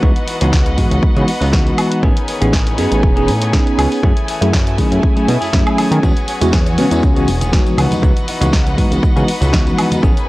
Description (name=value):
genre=filtered disco house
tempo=120 BPM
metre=4/4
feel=swing 54% on 16ths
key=unclear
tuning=A4 = 440 Hz
part: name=bell-like tine electric piano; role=accompaniment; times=0.0-10.1 s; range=E3 to G#4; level=-18 LUFS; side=equal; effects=phaser, sidechain pumping, low-pass filter
part: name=clear studio violin section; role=sustained chords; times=0.0-10.3 s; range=A3 to G#5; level=-25 LUFS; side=left 1 dB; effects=sidechain pumping, low-pass filter
part: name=direct-recorded clean electric guitar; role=riff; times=0.0-10.3 s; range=D#3 to G#4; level=-25 LUFS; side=left 2 dB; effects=sidechain pumping, low-pass filter
part: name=fat analog bass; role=bass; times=0.0-10.1 s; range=E1 to D#3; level=-17 LUFS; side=equal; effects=sidechain pumping, low-pass filter
part: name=electronic kick drum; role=drums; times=0.0-10.1 s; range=none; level=-14 LUFS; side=equal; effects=studio reverb
part: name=house drum kit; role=drums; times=0.2-10.3 s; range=hi-hat, shaker, snare drum, woodblock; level=-23 LUFS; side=equal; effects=sidechain pumping on hats, studio reverb, sidechain pumping on perc
part: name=swell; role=sound effects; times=5.2-6.0 s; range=none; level=-28 LUFS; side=right 3 dB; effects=none
part: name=tambourine and congas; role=percussion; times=6.0-10.3 s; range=none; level=-26 LUFS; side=right 1 dB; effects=none
room=little or no reverb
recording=dry, gritty hardware recording, cassette tape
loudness=-12 LUFS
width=side -19 dB against mid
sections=0.0-10.3 A section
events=swell 5.2-6.0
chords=0.0 C#m11; 2.0 Amaj9#11; 4.0 F#m9; 6.0 E69; 7.8 C#m11